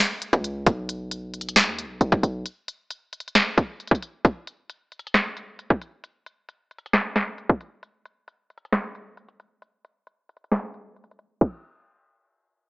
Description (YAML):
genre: hip hop, trap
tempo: 134 BPM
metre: 4/4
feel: half-time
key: unclear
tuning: A4 = 441 Hz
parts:
  - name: trap drum kit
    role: drums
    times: 0.2-11.5 s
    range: crash cymbal, hi-hat, kick drum, snare drum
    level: -19 LUFS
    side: equal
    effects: none
  - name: hard-hitting 808-style bass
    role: bass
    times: 0.3-2.4 s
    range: B1 to D#2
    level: -27 LUFS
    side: equal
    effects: none
room: light reverb, digital ambience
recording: low-pass filter, small speaker sound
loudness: -22 LUFS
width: side -28 dB against mid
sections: 0.0-11.4 A section; 11.4-12.7 B section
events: filter sweep 0.0-11.4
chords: none